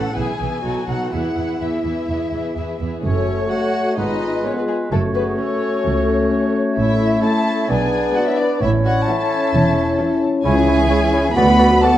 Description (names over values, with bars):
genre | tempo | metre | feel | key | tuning
quick classical-period movement for symphony orchestra | 129 BPM | 4/4 | straight | E major | A4 = 440 Hz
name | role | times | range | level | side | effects
dark chamber violin section | melody | 0.0-12.0 s | Ab4 to B5 | -25 LUFS | left 4 dB | none
rich chamber violin section | second line | 0.0-12.0 s | Ab3 to B4 | -28 LUFS | left 2 dB | none
warm studio viola section | accompaniment | 0.0-12.0 s | C#3 to D4 | -25 LUFS | right 1 dB | none
warm chamber cello section | bass | 0.0-11.7 s | C#2 to A4 | -24 LUFS | right 2 dB | none
rich chamber double bass section | bass | 0.2-11.7 s | E1 to E2 | -23 LUFS | right 2 dB | none
mellow hollow silver concert flute | second line | 3.0-12.0 s | F4 to F#5 | -23 LUFS | equal | none
mellow oboe | second line | 3.0-11.9 s | Cb5 to D5 | -30 LUFS | right 2 dB | none
warm clarinet | second line | 3.0-11.9 s | D4 to F#4 | -26 LUFS | left 1 dB | none
mellow bassoon | accompaniment | 3.0-11.9 s | Ab3 to C#4 | -24 LUFS | right 1 dB | none
mellow French horn section | sustained chords | 3.0-12.0 s | A3 to F#4 | -22 LUFS | left 4 dB | none
room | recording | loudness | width
wet recital hall reverb, RT60 1.4 s | dark, warm production | -16 LUFS | side -12 dB against mid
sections
0.0-3.0 A section; 3.0-12.0 B section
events
none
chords
0.2 E/B; 0.6 B7; 1.1 E; 3.0 F#m; 4.0 Fdim/Ab; 4.9 F#m; 6.8 A; 7.7 G#dim/B; 8.6 A; 10.4 C#m; 11.4 Bm/D